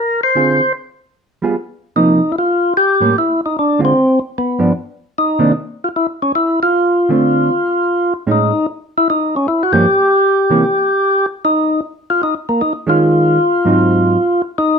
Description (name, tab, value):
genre	jazz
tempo	152 BPM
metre	4/4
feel	swing 66% on 8ths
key	unclear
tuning	A4 = 440 Hz
part	percussive tonewheel organ	melody	0.0-14.8 s	Bb3 to C5	-13 LUFS	left 1 dB	slow rotary speaker
part	hollow-body jazz guitar	accompaniment	0.4-14.2 s	G2 to Ab4	-14 LUFS	right 2 dB	none
room	wet studio reverb, RT60 0.6 s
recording	dark, warm production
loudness	-12 LUFS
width	side -6 dB against mid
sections	0.0-5.1 A section; 5.1-14.8 B section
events	none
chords	0.4 Dm7b5; 1.2 G7b9; 2.0 Cm7; 2.7 A7b9; 3.5 Dm7b5; 4.3 G7; 5.1 Cm9; 5.9 N.C.; 6.7 Dm7; 7.5 N.C.; 8.3 Amaj7#11; 9.9 Gdim; 10.6 N.C.; 11.4 Eb9sus4; 13.0 Ebm11; 13.8 Ab7